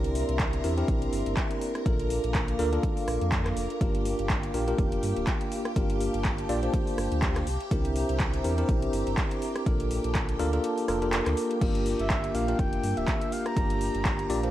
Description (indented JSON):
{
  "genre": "deep house",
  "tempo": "123 BPM",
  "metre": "4/4",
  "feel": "swing 56% on 16ths",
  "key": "G dorian",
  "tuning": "A4 = 440 Hz",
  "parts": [
    { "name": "warbly tape-like pad", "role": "sustained chords", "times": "0.0-14.5 s", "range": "Bb3 to D6", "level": "-37 LUFS", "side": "right 1 dB", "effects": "chorus, built-in reverb, sidechain pumping" },
    { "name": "bell-like tine electric piano", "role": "stabs", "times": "0.0-14.5 s", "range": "Bb3 to D5", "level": "-30 LUFS", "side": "equal", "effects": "medium stereo tremolo, sidechain pumping, tape echo" },
    { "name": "sub bass with octave", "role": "bass", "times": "0.0-14.5 s", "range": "D1 to G2", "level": "-31 LUFS", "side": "equal", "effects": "tube saturation, sidechain pumping" },
    { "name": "deep house drum kit", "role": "drums", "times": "0.0-14.5 s", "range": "crash cymbal, handclaps, hi-hat, rim click", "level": "-35 LUFS", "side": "equal", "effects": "overdrive" },
    { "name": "string machine, violins", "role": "texture", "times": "0.0-14.5 s", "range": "G4 to Bb6", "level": "-40 LUFS", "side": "equal", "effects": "ensemble chorus, sidechain pumping" },
    { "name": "electronic kick drum", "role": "drums", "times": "0.4-14.2 s", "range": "none", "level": "-29 LUFS", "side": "equal", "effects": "overdrive" },
    { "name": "breathy flute-like synth lead", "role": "melody", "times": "12.0-14.4 s", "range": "E5 to Bb5", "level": "-33 LUFS", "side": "equal", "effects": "chorus, dub echo" }
  ],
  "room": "light reverb",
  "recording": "vinyl crackle",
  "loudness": "-25 LUFS",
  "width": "side -13 dB against mid",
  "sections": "0.0-14.5 A section",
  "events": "kick drops out 10.6-11.6",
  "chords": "0.0 C9; 1.9 Bbmaj7; 3.8 Gm7; 7.5 C9; 9.7 Bbmaj7; 11.6 Gm7"
}